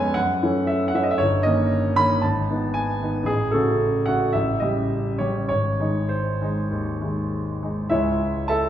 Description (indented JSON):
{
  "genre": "classical, romantic character piece for solo piano",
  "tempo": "98-118 BPM",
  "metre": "4/4",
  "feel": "rubato",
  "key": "unclear",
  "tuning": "A4 = 440 Hz",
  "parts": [
    { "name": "clear concert grand piano", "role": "solo", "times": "0.0-8.7 s", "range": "G1 to B5", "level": "-20 LUFS", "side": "equal", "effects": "none" }
  ],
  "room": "wet recital hall reverb, RT60 1.4 s",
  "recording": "heard from further back in the room",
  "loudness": "-20 LUFS",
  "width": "side -10 dB against mid",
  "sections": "0.0-7.9 A section",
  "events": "none",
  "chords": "0.2 F#m7; 1.2 D#7/G; 2.2 G#m; 3.3 F#m/A; 4.3 A7; 5.5 G#; 7.9 C#m",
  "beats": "0.16 0.67 | 1.18 1.71 2.23 2.75 | 3.26 3.79 4.34 4.90 | 5.49 6.10 6.70 7.31 | 7.91 8.49"
}